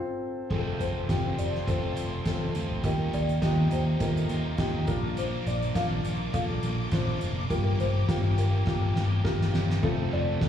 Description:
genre	piano-driven pop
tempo	103 BPM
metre	4/4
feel	swing 56% on 16ths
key	unclear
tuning	A4 = 442 Hz
part	folk marimba with soft mallets	melody	0.0-10.5 s	A4 to F5	-35 LUFS	left 2 dB	slapback echo
part	warm baby grand piano	accompaniment	0.0-10.5 s	G2 to C5	-33 LUFS	left 1 dB	slapback echo
part	warm symphonic string section	sustained chords	0.5-9.8 s	Bb3 to D6	-40 LUFS	left 2 dB	none
part	crunchy overdriven guitar	riff	0.5-10.5 s	F2 to A4	-36 LUFS	right 6 dB	slapback echo
part	fingered electric bass	bass	0.5-10.5 s	F1 to Eb2	-28 LUFS	equal	none
part	soft-mallet drum kit	drums	0.5-10.5 s	crash cymbal, hi-hat, kick drum, ride cymbal, snare drum, toms	-31 LUFS	equal	none
room	little or no reverb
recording	live gig heard through the venue's PA, recital hall reverb, studio ambience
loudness	-25 LUFS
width	side -9 dB against mid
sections	0.5-9.8 A section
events	break 0.0-0.5; drum fill 8.7-9.8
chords	0.0 F; 2.8 Ebadd9; 4.9 Bb; 7.5 Gm7; 9.8 F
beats	| 0.51 1.09 1.67 2.26 | 2.84 3.42 4.01 4.59 | 5.17 5.76 6.34 6.92 | 7.50 8.09 8.67 9.25 | 9.83 10.42

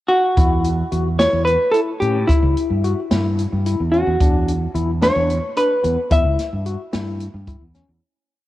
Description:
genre	progressive instrumental, band music in an uneven meter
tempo	220 BPM (eighths)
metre	7/8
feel	straight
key	E dorian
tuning	A4 = 440 Hz
part	vintage hollow-body jazz guitar	melody	0.1-7.4 s	E4 to E5	-19 LUFS	equal	cassette tape
part	overdriven tine electric piano	arpeggios	0.4-7.9 s	B3 to F#4	-26 LUFS	left 5 dB	fast tremolo, cassette tape
part	fretless electric bass	bass	0.4-8.0 s	C#2 to A2	-21 LUFS	equal	lush chorus
part	open jazz drum kit	drums	0.4-7.9 s	hi-hat, kick drum, snare drum	-19 LUFS	equal	cassette tape
room	light reverb, small room ambience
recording	home recording on cassette, lossy compression artefacts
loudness	-16 LUFS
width	side -15 dB against mid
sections	0.0-0.4 pickup bar; 0.4-8.0 A section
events	fade-out 6.1-8.0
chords	0.4 Emadd9; 4.2 Bm/E; 6.1 Em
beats	0.10 | 0.37 0.65 0.92 1.20 1.47 1.74 2.02 | 2.29 2.57 2.84 3.11 3.39 3.66 3.93 | 4.21 4.48 4.75 5.03 5.30 5.57 5.84 | 6.12 6.39 6.66 6.93 7.21 7.48 7.75

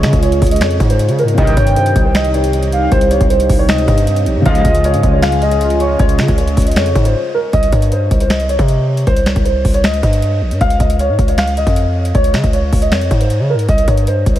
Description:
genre	hip hop, trap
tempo	156 BPM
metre	4/4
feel	half-time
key	C phrygian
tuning	A4 = 443 Hz
part	dark concert grand piano	melody	0.0-14.4 s	Bb4 to F5	-17 LUFS	equal	wide subtle chorus, tape echo
part	felt-muted upright piano	accompaniment	0.0-7.6 s	C3 to Ab4	-23 LUFS	left 2 dB	none
part	dark analog pad	sustained chords	0.0-7.5 s	C3 to Ab4	-21 LUFS	right 1 dB	chorus, phaser
part	distorted 808-style bass	bass	0.0-14.4 s	Bb1 to Db3	-15 LUFS	equal	distortion
part	booming analog drum machine	drums	0.0-14.4 s	finger snaps, hi-hat, kick drum, snare drum	-16 LUFS	equal	none
part	gliding portamento lead	second line	1.4-6.0 s	Db5 to G5	-23 LUFS	right 1 dB	chorus, tape echo
part	big bright polysynth	stabs	1.4-1.5, 4.5-4.6 s	C2 to F3	-28 LUFS	left 1 dB	none
room	moderate huge ambient reverb, RT60 7.8 s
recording	dreamy mix soaked in reverb, vinyl crackle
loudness	-11 LUFS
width	side -12 dB against mid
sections	0.0-7.5 A section; 7.5-14.4 B section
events	break 7.1-7.5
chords	0.0 Db; 1.4 Cm; 4.5 Db; 7.5 Cm; 10.6 Db; 13.7 Cm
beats	0.23 0.61 0.99 | 1.38 1.76 2.15 2.53 | 2.92 3.30 3.69 4.07 | 4.46 4.84 5.22 5.61 | 5.99 6.38 6.76 7.15 | 7.53 7.92 8.30 8.69 | 9.07 9.46 9.84 10.22 | 10.61 10.99 11.38 11.76 | 12.15 12.53 12.92 13.30 | 13.69 14.07

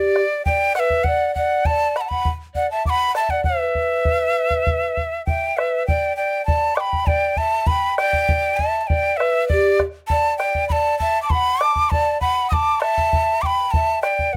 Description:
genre	andean folk, Andean ensemble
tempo	99 BPM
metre	4/4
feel	straight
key	E minor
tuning	A4 = 442 Hz
part	breathy bright quena	melody	0.0-14.4 s	D5 to D#6	-22 LUFS	equal	none
part	mellow hollow polished pan flute	second line	0.0-14.4 s	G4 to A5	-25 LUFS	equal	none
part	bombo	percussion	0.2-14.4 s	none	-26 LUFS	equal	none
room	light reverb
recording	none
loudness	-20 LUFS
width	mono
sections	0.0-5.9 A section; 5.9-14.4 A section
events	none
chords	none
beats	0.45 | 1.05 1.65 2.25 2.86 | 3.46 4.06 4.67 5.27 | 5.87 6.48 7.08 7.68 | 8.29 8.89 9.49 10.10 | 10.70 11.31 11.91 12.52 | 13.12 13.72 14.33

